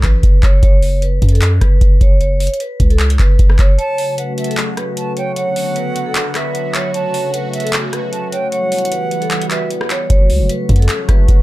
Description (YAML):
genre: hip hop, trap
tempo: 152 BPM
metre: 4/4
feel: half-time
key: F# phrygian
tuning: A4 = 436 Hz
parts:
  - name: vibraphone with medium mallets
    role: melody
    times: 0.0-11.4 s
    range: A4 to C#5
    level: -21 LUFS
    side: equal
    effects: low-pass filter
  - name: long sustained 808-style bass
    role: bass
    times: 0.0-3.8, 10.1-11.4 s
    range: F#1 to F#2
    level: -13 LUFS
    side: equal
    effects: none
  - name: booming analog drum machine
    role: drums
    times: 0.0-11.4 s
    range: handclaps, hi-hat, kick drum, rim click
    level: -14 LUFS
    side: equal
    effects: none
  - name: silver concert flute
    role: second line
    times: 3.8-9.7 s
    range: E5 to A5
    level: -25 LUFS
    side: right 3 dB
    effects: ping-pong delay
  - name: sweeping resonant pad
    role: sustained chords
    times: 3.8-11.4 s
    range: C#3 to F#4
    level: -22 LUFS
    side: equal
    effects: chorus
room: digital ambience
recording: none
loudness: -12 LUFS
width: side -17 dB against mid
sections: 0.0-11.4 A section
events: break 3.8-10.1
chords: 0.0 B5; 0.6 F#5; 2.2 F#sus4; 3.8 F#m; 5.4 Bm; 6.9 F#m; 8.5 Emadd9; 10.1 F#m